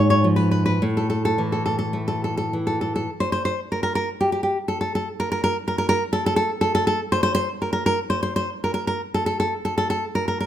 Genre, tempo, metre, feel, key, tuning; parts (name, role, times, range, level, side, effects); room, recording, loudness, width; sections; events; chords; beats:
romantic piece for solo classical guitar; 52-63 BPM; 2/4; rubato; A4 = 440 Hz
nylon-string guitar; solo; 0.0-10.5 s; G#2 to C#5; -20 LUFS; equal
light reverb; minimal, uncompressed stereo recording; -20 LUFS; side -11 dB against mid
0.0-3.1 A section; 3.1-10.5 B section
0.0 G#m6; 0.8 A5; 3.1 N.C.
| 0.83 1.99 | 3.10 4.10 | 5.08 6.05 | 7.00 7.99 | 9.01 10.05